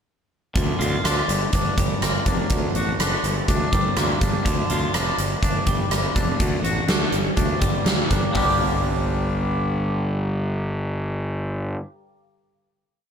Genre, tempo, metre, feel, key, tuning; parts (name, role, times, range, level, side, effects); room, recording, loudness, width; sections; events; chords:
quiet-loud alternative rock; 123 BPM; 4/4; straight; G minor; A4 = 439 Hz
twangy electric guitar; arpeggios; 0.5-11.9 s; G2 to G4; -26 LUFS; equal; lush chorus, slapback echo
fuzz fingered electric bass; bass; 0.6-11.7 s; F1 to D2; -25 LUFS; equal; overdrive
huge arena drum kit; drums; 0.6-8.5 s; hi-hat, kick drum, rim click, snare drum, toms; -22 LUFS; equal
moderate lush hall reverb, RT60 1.7 s, small room reverb; big arena sound; -20 LUFS; side -7 dB against mid
0.5-8.4 verse; 8.4-12.3 final chord
0.5 Dm; 1.3 Gm; 2.5 D; 3.2 Gm; 4.5 Dm; 5.2 Gm; 6.4 D; 7.1 Gm